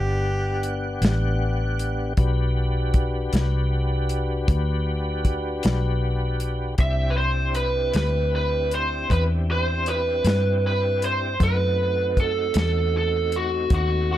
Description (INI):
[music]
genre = slow blues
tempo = 52 BPM (dotted quarters)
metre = 12/8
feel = straight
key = E minor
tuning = A4 = 439 Hz
[part]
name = mellow harmonica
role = second line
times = 0.0-0.6 s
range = G4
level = -28 LUFS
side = right 1 dB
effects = overdrive, plate reverb
[part]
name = tonewheel organ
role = sustained chords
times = 0.0-14.2 s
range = A3 to F#5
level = -30 LUFS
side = left 2 dB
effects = slow rotary speaker, chorus vibrato, plate reverb
[part]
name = vintage muted fingered electric bass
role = bass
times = 0.0-14.2 s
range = G1 to G2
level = -24 LUFS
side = equal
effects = none
[part]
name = warm soul drum kit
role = drums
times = 0.6-13.9 s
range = hi-hat, kick drum, snare drum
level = -23 LUFS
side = equal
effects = none
[part]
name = lead guitar through a small cranked amp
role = melody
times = 6.8-14.2 s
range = F#4 to E5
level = -23 LUFS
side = right 2 dB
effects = overdrive, plate reverb
[sound]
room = light reverb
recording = none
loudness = -20 LUFS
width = side -12 dB against mid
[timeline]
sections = 0.0-14.2 A section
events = none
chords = 0.0 Em7 (rootless); 6.8 Cmaj7; 11.4 B7b9